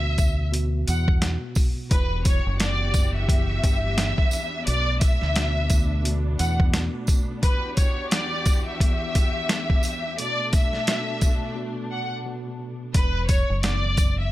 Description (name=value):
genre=hip hop, boom-bap hip-hop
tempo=87 BPM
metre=4/4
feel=swing 58% on 16ths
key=B minor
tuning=A4 = 440 Hz
part: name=rich studio violin section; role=melody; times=0.0-14.3 s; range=B4 to F#5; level=-28 LUFS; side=left 1 dB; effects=high-pass filter, low-pass filter, slapback echo
part: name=mellow tine electric piano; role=accompaniment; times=0.0-14.3 s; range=E2 to B2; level=-34 LUFS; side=equal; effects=medium stereo tremolo, cassette tape, high-pass filter, low-pass filter
part: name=deep dub fingered electric bass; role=bass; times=0.0-6.9, 12.9-14.3 s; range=E1 to E2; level=-24 LUFS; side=equal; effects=none
part: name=boom bap sampler-style drum kit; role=drums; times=0.2-14.2 s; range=hi-hat, kick drum, snare drum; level=-22 LUFS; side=equal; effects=none
part: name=tambourine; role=percussion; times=0.2-14.2 s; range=none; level=-37 LUFS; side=right 4 dB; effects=none
part: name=muted studio string section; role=sustained chords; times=1.9-12.9 s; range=E3 to G4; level=-35 LUFS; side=equal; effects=high-pass filter, low-pass filter
room=studio reverb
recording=none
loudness=-20 LUFS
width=side -16 dB against mid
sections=0.0-12.9 A section; 12.9-14.3 A section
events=break 11.6-12.9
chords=0.0 Bm; 1.9 Em9; 4.7 Bm7; 7.4 Em9; 10.2 Bm7; 12.9 Esus2